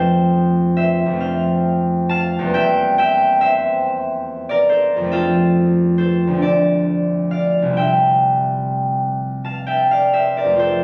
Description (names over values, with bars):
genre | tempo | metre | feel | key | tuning
classical, solo harp piece | 42-47 BPM (dotted quarters) | 6/8 | rubato | unclear | A4 = 438 Hz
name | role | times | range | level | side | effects
concert harp | solo | 0.0-10.8 s | C2 to A5 | -17 LUFS | equal | none
room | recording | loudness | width
wet recital hall reverb, RT60 1.6 s | recorded on a phone in the room, studio reverb | -17 LUFS | mono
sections
0.0-10.8 A section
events
none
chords
0.0 F; 2.5 C7/E; 5.1 F; 6.4 Dm; 7.8 C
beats
1.21 | 2.53 3.83 | 5.12 6.41 | 7.78 9.20 | 10.61